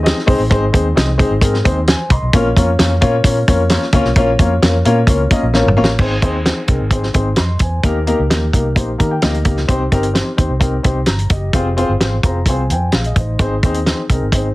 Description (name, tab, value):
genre	uptempo 1960s-style soul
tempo	130 BPM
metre	4/4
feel	straight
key	Ab major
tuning	A4 = 440 Hz
part	dark upright piano	accompaniment	0.0-14.5 s	Ab3 to C6	-17 LUFS	left 2 dB	plate reverb
part	vintage muted fingered electric bass	bass	0.0-14.5 s	F1 to Eb3	-18 LUFS	equal	none
part	warm soul drum kit	drums	0.1-14.4 s	crash cymbal, hi-hat, kick drum, snare drum, toms	-15 LUFS	equal	none
room	light reverb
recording	heavily compressed radio sound, multiband compression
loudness	-12 LUFS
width	side -19 dB against mid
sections	0.0-6.0 A section; 6.0-14.5 B section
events	drum fill 5.5-6.0; upright piano fill 8.8-9.7, 12.0-13.4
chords	0.0 Ab; 2.3 Bbm; 6.0 Ab; 7.8 Eb; 9.7 Cm; 11.5 Fm; 13.4 Ab